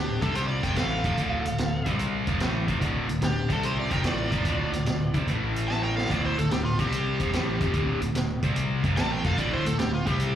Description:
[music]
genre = blues rock power trio and southern rock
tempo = 146 BPM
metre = 4/4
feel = swing 68% on 8ths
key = D minor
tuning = A4 = 445 Hz
[part]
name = overdriven slide guitar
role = melody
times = 0.0-10.4 s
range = F4 to A5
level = -32 LUFS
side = left 1 dB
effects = tape echo
[part]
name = dark smooth lead guitar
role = second line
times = 0.0-10.4 s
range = A3 to E5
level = -36 LUFS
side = right 5 dB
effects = overdrive, slapback echo
[part]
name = distorted electric guitar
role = riff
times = 0.0-10.4 s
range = D2 to C4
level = -27 LUFS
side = equal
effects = distortion, slapback echo
[part]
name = fuzz fingered electric bass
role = bass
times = 0.0-10.4 s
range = D1 to C2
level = -31 LUFS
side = equal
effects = overdrive
[part]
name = vintage drum kit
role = drums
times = 0.2-10.3 s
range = hi-hat, kick drum, snare drum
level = -30 LUFS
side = equal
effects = none
[sound]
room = little or no reverb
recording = live gig heard through the venue's PA, club reverb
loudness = -24 LUFS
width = side -10 dB against mid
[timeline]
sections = 0.0-10.4 A section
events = drum fill 5.7-6.1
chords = 0.2 C5; 0.6 Dm; 1.8 C5; 2.2 Dm; 3.4 C5; 3.8 Dm; 5.3 A5; 6.1 D5; 6.7 C5; 7.1 Dm; 8.4 C5; 8.8 Dm

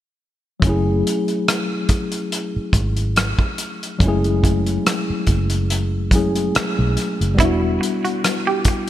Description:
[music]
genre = R&B, neo-soul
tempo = 71 BPM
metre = 4/4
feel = swing 54% on 16ths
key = F# minor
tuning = A4 = 437 Hz
[part]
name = tine electric piano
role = accompaniment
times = 0.6-8.9 s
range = F#3 to G#4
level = -21 LUFS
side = left 2 dB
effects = medium stereo tremolo
[part]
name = vintage muted fingered electric bass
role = bass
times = 0.6-7.8 s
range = E1 to B1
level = -20 LUFS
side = equal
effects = none
[part]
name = warm soul drum kit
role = drums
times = 0.6-8.9 s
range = hi-hat, kick drum, rim click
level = -20 LUFS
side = equal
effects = none
[part]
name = electric guitar at the edge of break-up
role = second line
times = 7.4-8.7 s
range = E4 to G4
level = -23 LUFS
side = right 6 dB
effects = none
[sound]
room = light reverb, studio ambience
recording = bright 1980s-style digital production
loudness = -17 LUFS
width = side -12 dB against mid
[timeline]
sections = 0.6-8.9 A section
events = none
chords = 0.6 F#m9; 7.4 Em9

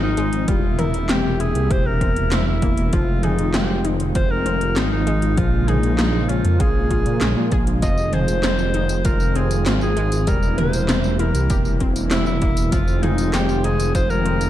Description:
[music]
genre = synthwave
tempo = 98 BPM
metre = 4/4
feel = straight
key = unclear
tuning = A4 = 440 Hz
[part]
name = clear alto saxophone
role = melody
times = 0.0-14.5 s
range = Eb4 to Eb5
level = -24 LUFS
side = equal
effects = ping-pong delay
[part]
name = brassy analog pad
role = sustained chords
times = 0.0-14.5 s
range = C3 to E5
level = -26 LUFS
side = equal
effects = chorus, sidechain pumping
[part]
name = wide unison pluck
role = arpeggios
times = 0.0-14.4 s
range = F3 to Bb4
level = -28 LUFS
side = left 4 dB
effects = tape echo
[part]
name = dark detuned saw bass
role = bass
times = 0.0-14.5 s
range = E1 to Bb2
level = -21 LUFS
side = equal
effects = none
[part]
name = 80s electronic pad drums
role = drums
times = 0.2-14.5 s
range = handclaps, hi-hat, snare drum, tambourine, toms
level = -26 LUFS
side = equal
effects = gated reverb on snare and toms, overdrive
[part]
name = electronic kick drum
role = drums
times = 0.5-14.1 s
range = none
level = -21 LUFS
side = equal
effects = overdrive
[sound]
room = light reverb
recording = dark, warm production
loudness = -17 LUFS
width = side -12 dB against mid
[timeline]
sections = 0.0-14.5 A section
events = none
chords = 0.5 C7/E; 2.9 Fm7; 5.4 Bbm7; 7.8 Fm7; 10.3 C7/E; 12.7 Fm7

